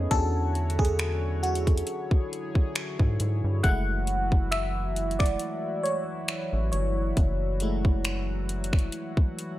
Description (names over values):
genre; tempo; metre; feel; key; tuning
contemporary R&B; 68 BPM; 4/4; swing 54% on 16ths; F# minor; A4 = 440 Hz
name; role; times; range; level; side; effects
FM electric piano; accompaniment; 0.0-9.6 s; G#3 to F#5; -31 LUFS; equal; chorus, phaser
chorused pulse-width pad; sustained chords; 0.0-9.6 s; D3 to C#5; -35 LUFS; equal; sidechain pumping
rubbery square bass; bass; 0.0-8.9 s; F#1 to G#2; -28 LUFS; equal; none
trap drum kit; drums; 0.1-9.6 s; finger snaps, hi-hat, kick drum; -25 LUFS; equal; none
room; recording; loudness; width
digital ambience; dark, warm production; -24 LUFS; side -15 dB against mid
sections
0.0-9.6 A section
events
FM electric piano solo 0.0-9.6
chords
0.1 E13; 3.6 F#m7